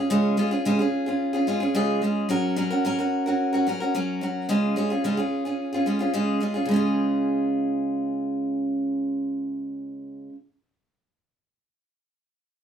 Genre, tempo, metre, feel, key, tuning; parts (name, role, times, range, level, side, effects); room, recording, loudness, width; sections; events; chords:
pop; 109 BPM; 4/4; straight; Db major; A4 = 438 Hz
picked steel-string acoustic guitar; solo; 0.0-10.4 s; Db3 to Bb4; -22 LUFS; right 1 dB
light reverb; band playing live in one room; -22 LUFS; side -8 dB against mid
0.0-6.7 A section; 6.7-11.1 B section
0.0 Db; 2.3 Gb; 4.5 Db